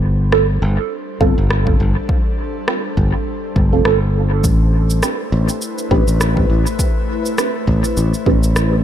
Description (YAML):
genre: ambient dub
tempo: 102 BPM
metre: 4/4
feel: swing 56% on 16ths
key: A minor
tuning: A4 = 442 Hz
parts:
  - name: airy breathy pad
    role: sustained chords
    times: 0.0-8.8 s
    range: G3 to C5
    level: -25 LUFS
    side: left 2 dB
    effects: chorus
  - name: modern bright fingered electric bass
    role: bass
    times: 0.0-8.8 s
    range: F1 to A1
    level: -15 LUFS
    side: equal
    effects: none
  - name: filtered dub chord stab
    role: stabs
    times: 0.3-8.4 s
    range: C4 to B4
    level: -21 LUFS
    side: right 5 dB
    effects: phaser, wide subtle chorus, dub echo
  - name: electronic rim click and cabasa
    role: drums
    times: 0.3-8.7 s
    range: none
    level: -24 LUFS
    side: equal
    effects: dub echo
  - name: electronic kick drum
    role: drums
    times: 1.2-8.4 s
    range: none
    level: -18 LUFS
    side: equal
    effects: overdrive
room: digital ambience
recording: none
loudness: -14 LUFS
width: side -10 dB against mid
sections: 0.0-8.8 A section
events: fade-in on analog synth pad 0.0-8.8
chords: 0.0 G7sus4; 4.4 Am11